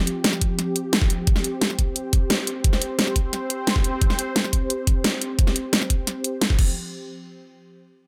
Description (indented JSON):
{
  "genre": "dark technical drum and bass",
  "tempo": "175 BPM",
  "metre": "4/4",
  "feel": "straight",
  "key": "unclear",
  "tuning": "A4 = 440 Hz",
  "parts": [
    { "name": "sweeping resonant pad", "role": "sustained chords", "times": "0.0-6.7 s", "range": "F3 to C5", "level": "-31 LUFS", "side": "equal", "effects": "chorus, vintage 12-bit sampler grit, sidechain pumping" },
    { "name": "dubstep drum kit", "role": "drums", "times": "0.1-6.7 s", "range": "crash cymbal, hi-hat, snare drum", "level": "-25 LUFS", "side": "equal", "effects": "none" },
    { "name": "electronic kick drum", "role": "drums", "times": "0.4-6.7 s", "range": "none", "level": "-23 LUFS", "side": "equal", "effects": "none" }
  ],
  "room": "digital ambience",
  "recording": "none",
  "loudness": "-22 LUFS",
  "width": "mono",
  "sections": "0.0-6.8 A section; 6.8-8.1 B section",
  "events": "none",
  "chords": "0.0 Fsus2; 1.3 C5; 6.6 Fsus2; 6.8 N.C."
}